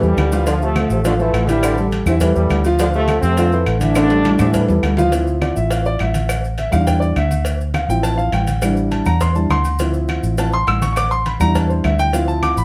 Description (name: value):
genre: latin, salsa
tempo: 206 BPM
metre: 4/4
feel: straight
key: D minor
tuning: A4 = 440 Hz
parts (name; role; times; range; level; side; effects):
- clear trombone section; melody; 0.0-4.8 s; D3 to D4; -22 LUFS; equal; none
- mellow bassoon; second line; 0.0-4.9 s; C3 to E3; -25 LUFS; equal; none
- dark concert grand piano; accompaniment; 0.0-12.6 s; E3 to E6; -22 LUFS; equal; none
- vintage muted fingered electric bass; bass; 0.0-12.6 s; A1 to A2; -21 LUFS; equal; none
- congas; percussion; 0.0-12.6 s; none; -29 LUFS; equal; none
- maracas; percussion; 0.0-12.6 s; none; -39 LUFS; equal; none
- claves; percussion; 0.2-12.6 s; none; -32 LUFS; equal; none
- cowbell and bongos; percussion; 0.2-12.6 s; none; -31 LUFS; equal; none
- timbales and agogo bells; percussion; 0.2-12.6 s; none; -30 LUFS; equal; none
room: moderate studio reverb, RT60 0.7 s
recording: none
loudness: -17 LUFS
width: mono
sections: 0.0-5.1 A section; 5.1-12.6 B section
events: drum fill 0.0-0.5, 4.0-5.1; grand piano solo 5.1-12.6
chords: 0.5 Dm7; 1.6 A7sus4; 2.8 Dm7; 4.0 A7sus4; 5.1 Dm7; 6.3 A7sus4; 7.5 Dm7; 8.6 A7sus4; 9.8 Dm7; 11.0 A7sus4; 12.1 Dm7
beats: 0.18 | 0.47 0.76 1.05 1.34 | 1.63 1.93 2.22 2.51 | 2.80 3.09 3.38 3.67 | 3.96 4.25 4.54 4.84 | 5.13 5.42 5.71 6.00 | 6.29 6.58 6.88 7.17 | 7.46 7.75 8.04 8.34 | 8.63 8.92 9.21 9.50 | 9.80 10.09 10.38 10.67 | 10.97 11.26 11.55 11.84 | 12.14 12.43